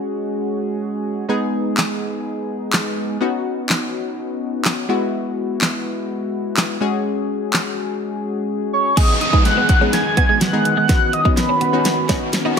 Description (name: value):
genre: dance-pop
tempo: 125 BPM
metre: 4/4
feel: straight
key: G# minor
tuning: A4 = 442 Hz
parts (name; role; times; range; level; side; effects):
- funky polysynth comp; accompaniment; 0.0-12.6 s; G#3 to G#4; -22 LUFS; left 2 dB; chorus, sidechain pumping
- pop drum kit; drums; 1.8-12.6 s; crash cymbal, handclaps, hi-hat, kick drum, snare drum; -19 LUFS; equal; none
- warm velvety synth lead; melody; 8.7-12.6 s; B5 to G#6; -18 LUFS; right 1 dB; chorus, tremolo, ping-pong delay
- chorused pulse-width pad; sustained chords; 9.0-12.6 s; D#3 to G#4; -25 LUFS; equal; sidechain pumping
- twelve-string electric guitar; riff; 9.0-12.6 s; F#3 to G#4; -26 LUFS; right 7 dB; ensemble chorus
- riser and downlifter; sound effects; 9.0-12.6 s; none; -25 LUFS; equal; none
room: light reverb, digital ambience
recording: high-pass filter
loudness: -17 LUFS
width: side -6 dB against mid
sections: 0.0-9.0 A section; 9.0-12.6 B section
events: build-up 9.0-12.6; drum fill 9.0-12.6; riser 9.0-12.6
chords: 0.0 F#sus2; 1.3 G#m; 3.2 Badd9; 4.9 Eadd9; 6.8 F#sus2; 9.0 G#m; 10.9 Badd9